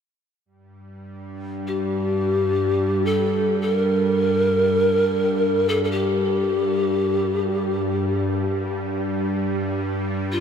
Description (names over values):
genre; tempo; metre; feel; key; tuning
world meditative, free-time meditation music; free time; none; none; G minor; A4 = 436 Hz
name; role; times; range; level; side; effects
bowed-like drone; drone; 0.9-10.4 s; G2 to G3; -24 LUFS; right 1 dB; built-in reverb
glass harmonica; texture; 1.1-10.0 s; D4; -30 LUFS; right 1 dB; none
breathy mellow pan flute; melody; 1.7-10.4 s; F4 to Bb4; -21 LUFS; left 1 dB; none
room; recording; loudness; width
wet huge ambient reverb, RT60 8.3 s; none; -19 LUFS; side -7 dB against mid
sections
0.5-10.4 A section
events
none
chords
none